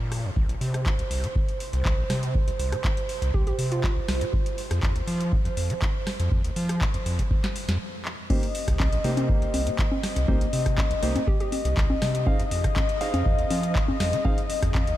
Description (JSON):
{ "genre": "acid house", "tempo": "121 BPM", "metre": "4/4", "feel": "straight", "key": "C minor", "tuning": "A4 = 437 Hz", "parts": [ { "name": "overdriven acid bass", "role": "riff", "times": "0.0-14.9 s", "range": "Bb1 to F3", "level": "-28 LUFS", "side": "equal", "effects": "tube saturation" }, { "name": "booming analog drum machine", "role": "drums", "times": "0.1-15.0 s", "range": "congas, crash cymbal, handclaps, hi-hat, rim click, snare drum", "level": "-31 LUFS", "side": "equal", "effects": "none" }, { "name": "warm analog pad", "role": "sustained chords", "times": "0.4-15.0 s", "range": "C5 to Eb5", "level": "-32 LUFS", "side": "left 1 dB", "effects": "chorus, sidechain pumping" }, { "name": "electronic kick drum", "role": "drums", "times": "0.4-14.8 s", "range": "none", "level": "-25 LUFS", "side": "equal", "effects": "none" }, { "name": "hollow square pluck", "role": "melody", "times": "3.3-3.9, 11.3-11.5 s", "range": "F4 to G4", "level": "-36 LUFS", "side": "right 3 dB", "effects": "chorus, ping-pong delay" }, { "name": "warm concert grand piano", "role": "stabs", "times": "8.3-14.4 s", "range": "Bb3 to F5", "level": "-32 LUFS", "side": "right 1 dB", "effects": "ping-pong delay" } ], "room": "light reverb, digital ambience", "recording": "none", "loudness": "-22 LUFS", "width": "side -14 dB against mid", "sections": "0.0-8.3 A section; 8.3-15.0 B section", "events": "break 7.8-8.3; drum fill 8.1; drop 8.3-15.0", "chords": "0.4 N.C.; 4.3 F5; 8.3 Cm7; 12.3 Fm7" }